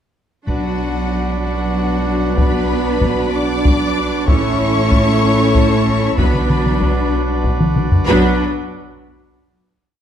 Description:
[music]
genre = cinematic, epic orchestral film score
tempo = 63 BPM (dotted quarters)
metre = 6/8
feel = straight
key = B minor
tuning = A4 = 439 Hz
[part]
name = rich studio violin section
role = melody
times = 0.5-8.4 s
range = F#5 to D6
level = -25 LUFS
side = left 4 dB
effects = none
[part]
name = clear studio violin section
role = second line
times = 0.5-8.4 s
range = F#4 to D5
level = -25 LUFS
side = left 5 dB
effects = none
[part]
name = rich studio viola section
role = accompaniment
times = 0.5-8.4 s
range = F#3 to E4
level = -22 LUFS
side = right 1 dB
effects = none
[part]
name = dark French horn section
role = sustained chords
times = 0.5-8.4 s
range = C#4 to A4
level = -26 LUFS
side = left 6 dB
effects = none
[part]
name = mellow trombone section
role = sustained chords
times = 0.5-8.4 s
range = E3 to B3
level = -26 LUFS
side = right 3 dB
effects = none
[part]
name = pipe organ, cornet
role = sustained chords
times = 0.5-8.4 s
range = C#4 to E5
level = -24 LUFS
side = left 1 dB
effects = none
[part]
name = rich symphonic cello section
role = bass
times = 0.5-8.4 s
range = F#3 to D4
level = -23 LUFS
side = right 3 dB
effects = none
[part]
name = rich symphonic double bass section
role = bass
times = 0.5-8.4 s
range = A1 to B1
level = -21 LUFS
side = right 2 dB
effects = none
[part]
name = taiko ensemble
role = drums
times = 0.5-8.2 s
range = none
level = -17 LUFS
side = equal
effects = none
[sound]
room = moderate recital hall reverb, RT60 1.3 s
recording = dark, warm production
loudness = -14 LUFS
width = side -9 dB against mid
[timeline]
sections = 0.5-8.1 theme; 8.1-10.0 final chord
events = drum fill 7.6-8.1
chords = 0.5 Bm; 4.3 A; 6.2 Bm

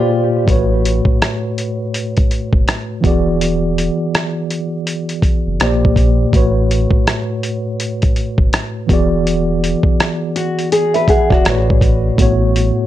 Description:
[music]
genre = lo-fi hip hop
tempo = 82 BPM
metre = 4/4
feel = swing 62% on 16ths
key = A major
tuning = A4 = 440 Hz
[part]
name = nylon-string guitar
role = second line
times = 0.0-0.5, 10.4-11.7 s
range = F4 to B4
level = -18 LUFS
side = left 3 dB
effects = low-pass filter, tape echo
[part]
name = mellow tine electric piano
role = accompaniment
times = 0.0-12.9 s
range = A2 to F#5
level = -17 LUFS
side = equal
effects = fast stereo tremolo, cassette tape, low-pass filter
[part]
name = warm sub bass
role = bass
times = 0.5-12.7 s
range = E1 to Bb1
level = -19 LUFS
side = equal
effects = none
[part]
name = dusty soul sampler-style drum kit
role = drums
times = 0.5-12.8 s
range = hi-hat, kick drum, rim click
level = -15 LUFS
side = equal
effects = vintage 12-bit sampler grit
[sound]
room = moderate studio reverb, RT60 0.6 s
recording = none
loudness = -13 LUFS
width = side -13 dB against mid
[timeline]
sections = 0.0-12.2 A section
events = none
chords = 0.5 A69; 3.0 E9; 5.6 Bb69; 6.3 A69; 8.9 E9; 11.5 A69

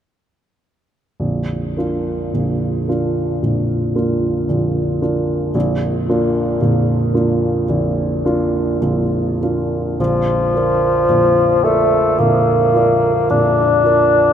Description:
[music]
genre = classical, romantic duo for bassoon and grand piano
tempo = 49-58 BPM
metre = 4/4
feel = rubato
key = Bb major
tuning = A4 = 437 Hz
[part]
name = warm grand piano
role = accompaniment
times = 1.2-14.3 s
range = Bb0 to D5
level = -16 LUFS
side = right 1 dB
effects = none
[part]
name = warm bassoon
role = melody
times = 10.0-14.3 s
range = F3 to D4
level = -13 LUFS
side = left 1 dB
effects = none
[sound]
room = wet huge ambient reverb, RT60 8.3 s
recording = in a vast, echoing space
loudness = -14 LUFS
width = side -9 dB against mid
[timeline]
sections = 1.2-10.0 A section; 10.0-14.3 B section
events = none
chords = 1.2 Bb

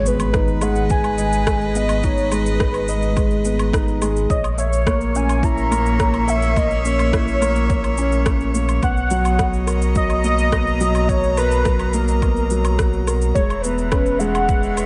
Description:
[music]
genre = piano and strings electronica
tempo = 106 BPM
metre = 4/4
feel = straight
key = G# minor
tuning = A4 = 440 Hz
[part]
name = warm velvety synth lead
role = melody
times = 0.0-14.9 s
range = A#4 to A#5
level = -25 LUFS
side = equal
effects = chorus, cassette tape
[part]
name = rich string quartet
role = sustained chords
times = 0.0-14.9 s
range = A#2 to A#5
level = -30 LUFS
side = equal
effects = sidechain pumping
[part]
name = felt-muted upright piano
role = riff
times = 0.0-14.9 s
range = F#3 to E5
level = -25 LUFS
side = equal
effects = delay
[part]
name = warm sub bass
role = bass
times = 0.0-14.9 s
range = E1 to B1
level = -24 LUFS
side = equal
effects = tube saturation, sidechain pumping
[part]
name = impact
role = sound effects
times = 0.0-2.0 s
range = none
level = -33 LUFS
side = equal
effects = none
[part]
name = electronic shaker, woodblock and rim click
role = drums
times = 0.1-14.9 s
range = none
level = -30 LUFS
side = equal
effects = overdrive
[part]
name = electronic kick drum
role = drums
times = 0.3-14.6 s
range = none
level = -24 LUFS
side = equal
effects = overdrive
[sound]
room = light reverb, digital ambience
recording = nothing above 10.8 kHz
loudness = -19 LUFS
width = mono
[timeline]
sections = 0.0-14.9 A section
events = impact 0.0-2.0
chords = 0.0 G#m; 4.3 A#dim; 8.8 Bmaj7; 13.4 E6

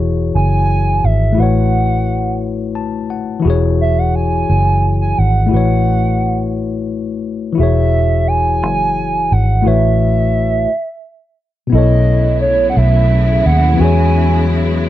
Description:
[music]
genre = slow six-eight R&B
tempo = 58 BPM (dotted quarters)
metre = 6/8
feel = straight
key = E major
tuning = A4 = 441 Hz
[part]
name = tine electric piano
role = accompaniment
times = 0.0-14.9 s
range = B2 to A5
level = -18 LUFS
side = left 7 dB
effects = none
[part]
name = vintage muted fingered electric bass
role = bass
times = 0.0-14.9 s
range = E1 to E2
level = -14 LUFS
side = right 1 dB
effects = none
[part]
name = hollow clarinet-like synth lead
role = melody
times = 0.3-14.6 s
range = C#5 to G#5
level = -18 LUFS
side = right 3 dB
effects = chorus, slapback echo
[part]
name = rich studio string section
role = sustained chords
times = 11.7-14.9 s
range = C#3 to E4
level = -22 LUFS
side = right 2 dB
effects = none
[sound]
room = little or no reverb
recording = dry, close 1970s-style studio recording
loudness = -12 LUFS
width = side -13 dB against mid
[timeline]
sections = 0.0-11.7 A section; 11.7-14.9 B section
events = tine electric piano fill 2.4-3.4; stop 10.7-11.7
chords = 0.0 E69; 1.4 A6; 3.4 E69; 5.5 A6; 7.6 E69; 9.6 A6; 11.7 B9sus4; 13.8 E69

